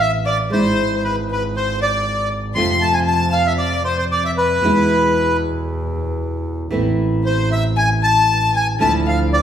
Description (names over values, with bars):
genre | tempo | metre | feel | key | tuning
tango | 116 BPM | 4/4 | rubato | A harmonic minor | A4 = 438 Hz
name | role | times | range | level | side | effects
bandoneon | melody | 0.0-9.4 s | B4 to C6 | -18 LUFS | equal | none
warm violin | second line | 0.0-9.4 s | B4 to C6 | -24 LUFS | left 5 dB | none
nylon-string guitar | accompaniment | 0.0-9.4 s | B2 to F4 | -22 LUFS | right 2 dB | none
clear double bass | bass | 0.0-9.4 s | G#1 to F2 | -22 LUFS | right 1 dB | none
room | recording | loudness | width
wet large studio reverb, RT60 1.2 s | band playing live in one room | -15 LUFS | side -9 dB against mid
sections
0.0-9.4 A section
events
none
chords
0.0 Amadd9; 0.5 E/G#; 2.6 F; 4.6 E; 6.7 Am; 8.8 Dmadd9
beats
0.00 | 0.52 1.03 1.55 2.06 | 2.57 3.08 3.60 4.12 | 4.63 5.15 5.67 6.19 | 6.72 7.24 7.76 8.28 | 8.80 9.32